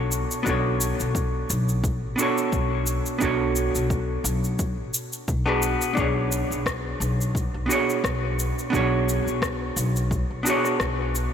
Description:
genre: sunset chillout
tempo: 87 BPM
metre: 4/4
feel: swing 56% on 16ths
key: B dorian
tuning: A4 = 441 Hz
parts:
  - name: vintage hollow-body jazz guitar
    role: accompaniment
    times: 0.0-11.3 s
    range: B3 to C#5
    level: -25 LUFS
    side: moving between left 3 dB and right 4 dB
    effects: auto-pan, low-pass filter, ping-pong delay
  - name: upright bass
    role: bass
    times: 0.0-11.3 s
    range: A1 to B1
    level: -27 LUFS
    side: left 1 dB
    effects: none
  - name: electronic cabasa and rim click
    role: drums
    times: 0.1-11.3 s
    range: none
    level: -30 LUFS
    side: left 1 dB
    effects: none
  - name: electronic kick drum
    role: drums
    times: 0.5-11.0 s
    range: none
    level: -29 LUFS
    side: equal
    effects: none
room: wet cathedral reverb, RT60 5.4 s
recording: dreamy mix soaked in reverb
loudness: -22 LUFS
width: side -8 dB against mid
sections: 0.0-11.3 A section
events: none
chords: 0.0 Bm9; 5.6 Bm69

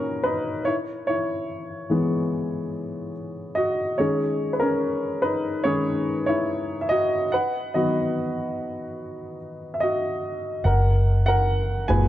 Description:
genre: pop ballad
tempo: 72 BPM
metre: 4/4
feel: straight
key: F# mixolydian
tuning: A4 = 443 Hz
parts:
  - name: warm baby grand piano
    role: accompaniment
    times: 0.0-12.1 s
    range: A#2 to G#5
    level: -23 LUFS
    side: equal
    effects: none
  - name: vintage muted fingered electric bass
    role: bass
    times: 10.7-12.1 s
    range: F#1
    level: -19 LUFS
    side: equal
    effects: none
room: light reverb, small room ambience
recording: dark, warm production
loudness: -22 LUFS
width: side -13 dB against mid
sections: 0.0-12.1 A section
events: grand piano solo 0.0-12.1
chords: 0.0 F#add9; 0.7 E; 4.0 C#sus2; 7.3 B/D#; 10.7 F#add9

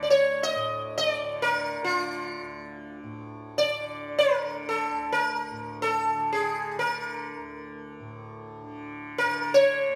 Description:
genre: indian classical, Hindustani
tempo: free time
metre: none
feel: none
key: D raga todi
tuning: A4 = 441 Hz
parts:
  - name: sitar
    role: melody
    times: 0.0-10.0 s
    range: F4 to Eb5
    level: -26 LUFS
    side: equal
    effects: none
  - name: tanpura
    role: drone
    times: 0.0-10.0 s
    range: D2 to D3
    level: -40 LUFS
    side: equal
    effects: none
room: wet large studio reverb, RT60 1.1 s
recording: band playing live in one room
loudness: -27 LUFS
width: mono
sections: 0.0-10.0 A section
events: none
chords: none

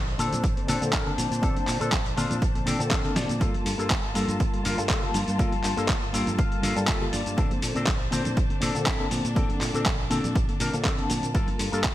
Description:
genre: filtered disco house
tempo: 121 BPM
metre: 4/4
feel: swing 54% on 16ths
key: unclear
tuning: A4 = 440 Hz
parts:
  - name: reed electric piano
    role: accompaniment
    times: 0.0-11.9 s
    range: D3 to A5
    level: -31 LUFS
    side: left 2 dB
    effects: overdrive, fast tremolo, phaser, sidechain pumping, low-pass filter
  - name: clear studio violin section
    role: sustained chords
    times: 0.0-11.9 s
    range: Bb3 to A5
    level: -36 LUFS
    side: left 1 dB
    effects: sidechain pumping, low-pass filter
  - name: modern bright fingered electric bass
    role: bass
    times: 0.0-11.9 s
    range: G1 to Bb2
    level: -31 LUFS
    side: equal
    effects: sidechain pumping, low-pass filter
  - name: electric guitar with an envelope filter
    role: riff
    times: 0.1-11.8 s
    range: Bb3 to G5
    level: -32 LUFS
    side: left 2 dB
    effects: sidechain pumping, low-pass filter
  - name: tambourine and congas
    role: percussion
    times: 0.1-11.9 s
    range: none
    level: -40 LUFS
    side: right 2 dB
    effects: none
  - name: dusty soul sampler-style drum kit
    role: drums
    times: 0.2-11.9 s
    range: cabasa, handclaps, hi-hat, snare drum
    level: -30 LUFS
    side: equal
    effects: overdrive, sidechain pumping on hats, sidechain pumping on perc
  - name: electronic kick drum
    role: drums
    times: 0.4-11.9 s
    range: none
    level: -27 LUFS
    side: equal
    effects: none
room: light reverb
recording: bright 1980s-style digital production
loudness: -23 LUFS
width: side -14 dB against mid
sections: 0.0-11.9 A section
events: clean electric guitar fill 2.4-3.4, 5.9-7.4; drum fill 3.2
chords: 0.0 Bbmaj9; 3.4 Gm9; 7.4 Bbmaj9; 11.3 Gm9

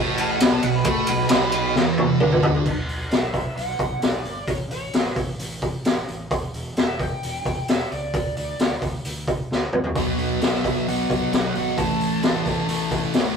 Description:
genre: blues rock power trio and southern rock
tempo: 132 BPM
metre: 4/4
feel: straight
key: B minor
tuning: A4 = 441 Hz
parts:
  - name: thick fuzz guitar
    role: riff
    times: 0.0-2.7, 10.0-13.4 s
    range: A2 to B3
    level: -22 LUFS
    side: right 1 dB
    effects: distortion
  - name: fuzz fingered electric bass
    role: bass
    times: 0.0-13.3 s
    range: E1 to A2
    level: -34 LUFS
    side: equal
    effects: overdrive
  - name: lead guitar through a small cranked amp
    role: melody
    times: 0.2-13.1 s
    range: C#5 to B5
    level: -29 LUFS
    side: right 2 dB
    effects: wah, overdrive
  - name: raw garage drum kit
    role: drums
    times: 0.2-13.2 s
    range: crash cymbal, hi-hat, kick drum, ride cymbal, snare drum, toms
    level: -22 LUFS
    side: equal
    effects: none
room: light reverb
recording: rough rehearsal-room recording, warm saturation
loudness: -20 LUFS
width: side -6 dB against mid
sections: 0.0-2.7 A section; 2.7-13.4 B section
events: lead electric guitar solo 0.0-2.7; drum fill 1.8-2.7, 9.5-10.0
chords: 0.0 Bm; 4.5 A; 6.3 Em; 8.1 N.C.; 10.0 B5; 11.8 A5

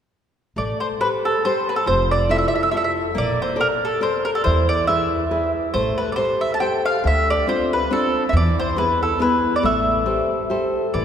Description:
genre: italian folk, Italian serenade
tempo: 139 BPM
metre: 3/4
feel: swing 55% on 8ths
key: A minor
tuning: A4 = 440 Hz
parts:
  - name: mandolin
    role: melody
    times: 0.6-11.0 s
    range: A4 to A5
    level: -20 LUFS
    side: right 1 dB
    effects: none
  - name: nylon-string guitar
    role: accompaniment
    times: 0.6-11.0 s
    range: D3 to D5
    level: -23 LUFS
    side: left 2 dB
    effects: none
  - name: upright bass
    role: bass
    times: 0.6-11.0 s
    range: F1 to E2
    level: -24 LUFS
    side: equal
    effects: none
room: wet church reverb, RT60 3.6 s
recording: recorded in a church or concert hall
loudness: -18 LUFS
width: side -8 dB against mid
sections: 0.6-11.0 A section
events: none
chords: 0.6 Am7; 1.9 Fmaj7; 3.2 Bbmaj7; 4.5 E; 5.8 Am7; 7.1 Dm7; 8.3 E; 9.6 Am7

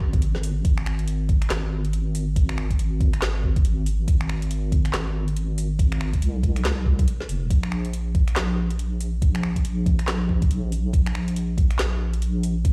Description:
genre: deep dubstep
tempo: 140 BPM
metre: 4/4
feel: swing 60% on 16ths, half-time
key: unclear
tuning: A4 = 440 Hz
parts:
  - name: deep soft wobble bass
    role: bass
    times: 0.0-12.7 s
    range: F1 to C2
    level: -26 LUFS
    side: equal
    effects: chorus
  - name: electronic kick drum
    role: drums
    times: 0.0-12.7 s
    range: none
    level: -23 LUFS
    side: equal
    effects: none
  - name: garage drum kit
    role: drums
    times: 0.1-12.7 s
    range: finger snaps, handclaps, hi-hat, snare drum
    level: -34 LUFS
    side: equal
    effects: none
room: little or no reverb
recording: played on a big sound system in a bare room, stone room reverb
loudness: -23 LUFS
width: mono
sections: 0.0-12.7 A section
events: none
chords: none

